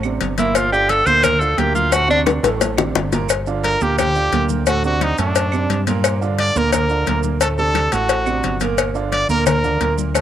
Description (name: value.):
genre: latin, salsa.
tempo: 175 BPM.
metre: 4/4.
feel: straight.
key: G minor.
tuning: A4 = 441 Hz.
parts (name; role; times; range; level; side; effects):
clear baby grand piano; accompaniment; 0.0-10.2 s; A2 to Bb4; -23 LUFS; right 7 dB; cassette tape.
fingered electric bass; bass; 0.0-10.2 s; G1 to G2; -22 LUFS; equal; none.
claves; percussion; 0.0-10.2 s; none; -33 LUFS; right 10 dB; none.
congas; percussion; 0.0-10.2 s; none; -27 LUFS; left 9 dB; none.
maracas; percussion; 0.0-10.2 s; none; -30 LUFS; right 10 dB; none.
cowbell and bongos; percussion; 0.2-10.2 s; none; -22 LUFS; left 8 dB; none.
bright tenor saxophone; melody; 0.4-2.2 s; D4 to C5; -16 LUFS; equal; cassette tape.
brilliant trumpet; melody; 3.6-9.9 s; D4 to D5; -20 LUFS; equal; cassette tape.
room: light reverb.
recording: home recording on cassette.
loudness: -15 LUFS.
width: side -10 dB against mid.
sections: 0.0-3.3 A section; 3.3-10.2 B section.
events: tenor saxophone solo 0.0-3.3; drum fill 2.3-3.3.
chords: 0.0 D7(no3); 0.6 Gm7; 1.9 D5; 3.3 Gm7; 4.7 D7; 6.0 Gm7; 7.4 D7; 8.8 Gm7.